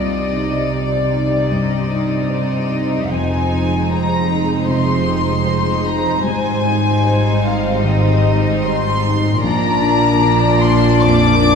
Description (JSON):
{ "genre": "cinematic, emotional film score for orchestra", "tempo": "76 BPM", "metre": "4/4", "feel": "rubato", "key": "C minor", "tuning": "A4 = 440 Hz", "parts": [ { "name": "warm studio violin section", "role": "melody", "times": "0.0-11.6 s", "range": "D5 to D6", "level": "-21 LUFS", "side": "left 3 dB", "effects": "none" }, { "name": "warm studio violin section", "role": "second line", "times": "0.0-11.6 s", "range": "D4 to D5", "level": "-22 LUFS", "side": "left 3 dB", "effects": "none" }, { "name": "dark baby grand piano", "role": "accompaniment", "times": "0.0-11.6 s", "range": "Bb1 to D5", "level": "-20 LUFS", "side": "left 1 dB", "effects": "none" }, { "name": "warm chamber viola section", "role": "accompaniment", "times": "0.0-11.6 s", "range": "F3 to C4", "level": "-23 LUFS", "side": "right 1 dB", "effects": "none" }, { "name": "dark studio double bass section", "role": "bass", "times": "0.0-11.6 s", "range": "F1 to C2", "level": "-20 LUFS", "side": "right 2 dB", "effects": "none" }, { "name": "warm studio cello section", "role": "bass", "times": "0.0-11.6 s", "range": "F2 to C3", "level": "-23 LUFS", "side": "right 1 dB", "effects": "none" } ], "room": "wet scoring stage reverb, RT60 1.5 s", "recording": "heard from further back in the room", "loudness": "-14 LUFS", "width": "side -6 dB against mid", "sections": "0.0-11.6 A section", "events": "none", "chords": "0.0 Cmadd9; 3.1 Fm7; 6.3 Abmaj7; 9.4 Bb", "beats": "0.72 1.51 2.31 | 3.12 3.91 4.70 5.47 | 6.25 7.04 7.83 8.64 | 9.42 10.21 11.00" }